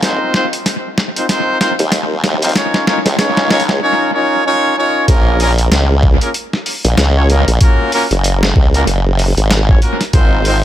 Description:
glitch hop; 95 BPM; 4/4; swing 59% on 16ths; Bb minor; A4 = 440 Hz
bright horn section; stabs; 0.0-10.6 s; Bb3 to Db5; -16 LUFS; equal; sidechain pumping, low-pass filter, analog delay
formant-sweep wobble bass; bass; 0.0-10.6 s; Gb1 to Eb2; -13 LUFS; equal; chorus, high-pass filter
boom bap sampler-style drum kit; drums; 0.0-10.6 s; hi-hat, snare drum; -17 LUFS; equal; analog delay
electronic kick drum; drums; 0.0-10.3 s; -11 LUFS; equal; high-pass filter on kick, high-pass filter on room
light reverb, digital ambience; echo-heavy mix; -11 LUFS; side -12 dB against mid
0.0-5.1 A section; 5.1-10.6 B section
build-up 0.0-5.1; drum fill 0.0-3.8; drop 5.1-10.6
0.0 Ab69 (rootless); 2.6 Db; 5.1 Bbm7; 7.6 Gbmaj9; 10.1 Ab69
| 0.03 0.66 1.29 1.93 | 2.56 3.19 3.82 4.45 | 5.08 5.71 6.35 6.98 | 7.61 8.24 8.87 9.50 | 10.14

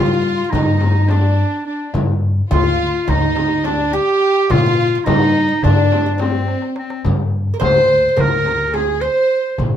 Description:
Turkish makam ensemble; 212 BPM (eighths); 9/8; straight; G makam kurdi; A4 = 440 Hz
clear clarinet; melody; 0.0-9.6 s; C4 to C5; -17 LUFS; right 1 dB
dark studio violin section; second line; 0.0-9.6 s; C4 to C5; -24 LUFS; equal
oud; second line; 0.0-9.5 s; C4 to C5; -25 LUFS; equal
upright bass; bass; 0.0-9.8 s; D2 to G3; -18 LUFS; equal
darbuka; percussion; 0.5-9.7 s; -23 LUFS; right 2 dB
frame drum; percussion; 0.5-9.7 s; -23 LUFS; left 4 dB
moderate studio reverb, RT60 0.6 s; minimal, uncompressed stereo recording; -14 LUFS; side -10 dB against mid
0.0-9.8 A section
drum fill 6.5-7.0
0.25 0.53 0.82 1.10 1.38 1.67 | 1.95 2.23 2.52 2.80 3.08 3.37 3.65 3.93 4.22 | 4.50 4.78 5.07 5.35 5.63 5.92 6.20 6.48 6.77 | 7.05 7.33 7.62 7.90 8.18 8.46 8.75 9.03 9.31 | 9.60

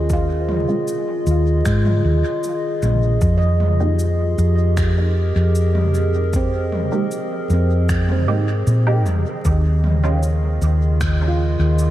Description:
ambient dub; 77 BPM; 4/4; straight; F minor; A4 = 438 Hz
warbly tape-like pad; sustained chords; 0.0-11.9 s; Db3 to Eb5; -24 LUFS; equal; chorus, built-in reverb
handpan; arpeggios; 0.0-11.9 s; C4 to Eb5; -30 LUFS; right 3 dB; dub echo
hollow-body short-scale fingered electric bass; bass; 0.0-11.9 s; Bb1 to Bb2; -17 LUFS; equal
electronic kick drum; drums; 0.1-11.2 s; -22 LUFS; equal; overdrive
organic electronic drum kit; drums; 0.1-11.9 s; cabasa, finger snaps, toms; -29 LUFS; equal; overdrive, dub echo
filtered dub chord stab; stabs; 0.7-10.3 s; Ab3 to G4; -28 LUFS; right 3 dB; phaser, lush chorus, dub echo
light reverb; vinyl crackle; -16 LUFS; side -13 dB against mid
0.0-11.9 A section
0.0 Eb9sus4; 3.2 Fm11; 9.5 Eb9sus4
| 0.10 0.88 1.66 2.44 | 3.22 4.00 4.78 5.55 | 6.33 7.11 7.89 8.67 | 9.45 10.23 11.01 11.79

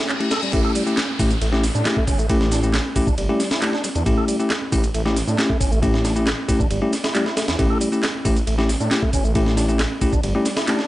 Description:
breakbeat, breaks; 136 BPM; 4/4; straight; A4 = 440 Hz
tonewheel organ; riff; 0.0-10.9 s; G3 to A4; -28 LUFS; right 1 dB; overdrive, fast rotary speaker, tube saturation, analog delay
reverse cymbal and downlifter; sound effects; 0.0-4.1 s; -31 LUFS; left 2 dB
house drum kit; drums; 0.1-10.8 s; handclaps, hi-hat, shaker; -28 LUFS; right 1 dB
bell-like tine electric piano; stabs; 0.2-10.8 s; A3 to G4; -22 LUFS; left 2 dB; analog delay
breakbeat sampler-style drum kit; drums; 0.2-10.9 s; hi-hat, kick drum, ride cymbal, snare drum; -22 LUFS; equal
detuned saw bass; bass; 0.5-10.3 s; G1 to A2; -23 LUFS; equal
digital ambience; dry, gritty hardware recording, nothing above 10.7 kHz; -17 LUFS; side -16 dB against mid
0.5-10.9 A section
break 0.0-0.5; reverse cymbal 0.0-0.5; drop 0.5-10.9
0.0 A7
0.09 | 0.53 0.97 1.41 1.85 | 2.30 2.74 3.18 3.62 | 4.06 4.50 4.94 5.38 | 5.83 6.27 6.71 7.15 | 7.59 8.03 8.47 8.91 | 9.36 9.80 10.24 10.68

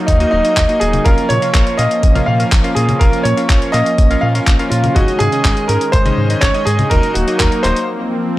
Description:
italo disco; 123 BPM; 4/4; straight; Bb minor; A4 = 440 Hz
bright concert grand piano; melody; 0.0-7.9 s; Eb4 to F5; -17 LUFS; right 1 dB; tape echo
warm analog pad; sustained chords; 0.0-8.4 s; Eb3 to Eb4; -20 LUFS; equal; chorus
round analog bass; bass; 0.1-7.7 s; Eb1 to Bb2; -17 LUFS; equal; tube saturation
dusty soul sampler-style drum kit; drums; 0.1-7.9 s; handclaps, hi-hat, toms; -21 LUFS; left 2 dB
electronic kick drum; drums; 0.1-7.5 s; -14 LUFS; equal
clear electric grand piano; stabs; 0.2-7.8 s; Bb3 to F5; -23 LUFS; left 2 dB; tape echo
light reverb; dry, gritty hardware recording; -11 LUFS; side -16 dB against mid
0.0-8.4 A section
break 7.9-8.4
0.0 Ebm; 1.1 Bbm; 5.0 Absus4; 6.9 Ebm; 7.9 Fsus4
0.08 0.57 | 1.06 1.54 2.03 2.52 | 3.01 3.50 3.98 4.47 | 4.96 5.45 5.93 6.42 | 6.91 7.40 7.89 8.37

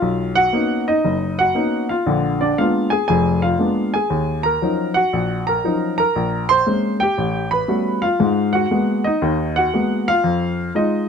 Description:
solo jazz; 117 BPM; 4/4; swing 66% on 8ths; Eb minor; A4 = 440 Hz
warm baby grand piano; solo; 0.0-11.1 s; F1 to C6; -16 LUFS; equal
light reverb; close, detailed microphones; -16 LUFS; side -6 dB against mid
0.0-11.1 A section
0.0 Bmaj9; 2.1 Bb7b9; 4.1 Ebm9; 6.1 Bbm9; 7.2 A13; 8.2 Abm9; 10.2 Fm7
| 0.01 0.52 1.03 1.54 | 2.06 2.57 3.08 3.59 | 4.10 4.61 5.12 5.63 | 6.15 6.66 7.17 7.68 | 8.19 8.70 9.22 9.73 | 10.24 10.75

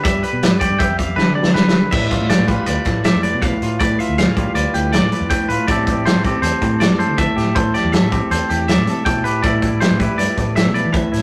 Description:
math rock and midwest emo; 160 BPM; 5/4; straight; A4 = 441 Hz
twangy electric guitar; accompaniment; 0.0-11.2 s; A2 to E5; -24 LUFS; equal
twangy electric guitar; arpeggios; 0.0-11.2 s; G4 to G5; -24 LUFS; equal
loose indie drum kit; drums; 0.0-11.2 s; crash cymbal, hi-hat, kick drum, snare drum; -20 LUFS; equal
picked electric bass; bass; 0.1-11.2 s; D2 to G3; -25 LUFS; equal
moderate small room reverb, RT60 0.6 s; rough rehearsal-room recording, tube saturation; -17 LUFS; mono
0.0-1.9 A section; 1.9-11.2 B section
drum fill 1.2-1.9
0.0 G13; 1.9 G7; 5.7 Am7; 9.4 Cmaj7 (rootless)
| 0.04 0.42 0.79 1.17 1.54 | 1.92 2.29 2.67 3.05 3.42 | 3.80 4.17 4.55 4.92 5.30 | 5.67 6.05 6.43 6.80 7.18 | 7.55 7.93 8.30 8.68 9.05 | 9.43 9.81 10.18 10.56 10.93

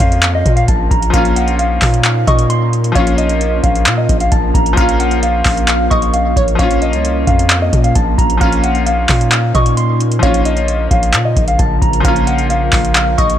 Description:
hip hop, trap; 132 BPM; 4/4; half-time; Bb minor; A4 = 441 Hz
mellow electric guitar; melody; 0.0-13.4 s; Eb5 to Db6; -18 LUFS; equal; spring reverb, low-pass filter, ping-pong delay
glassy wavetable pluck; second line; 0.0-13.4 s; Db5 to F5; -22 LUFS; right 2 dB; chorus, ping-pong delay
bright concert grand piano; accompaniment; 0.0-13.4 s; F3 to F4; -21 LUFS; left 5 dB; low-pass filter
glassy FM pad; sustained chords; 0.0-13.4 s; Db3 to Bb4; -22 LUFS; equal; ensemble chorus, built-in reverb
long sustained 808-style bass; bass; 0.0-13.4 s; Bb1 to Bb2; -16 LUFS; equal
booming analog drum machine; drums; 0.0-13.4 s; handclaps, hi-hat, kick drum; -15 LUFS; equal; vintage 12-bit sampler grit
little or no reverb; -11 LUFS; side -10 dB against mid
0.0-13.4 A section
0.0 Bbm
0.23 0.68 | 1.14 1.59 2.05 2.50 | 2.96 3.41 3.87 4.32 | 4.77 5.23 5.68 6.14 | 6.59 7.05 7.50 7.96 | 8.41 8.87 9.32 9.77 | 10.23 10.68 11.14 11.59 | 12.05 12.50 12.96

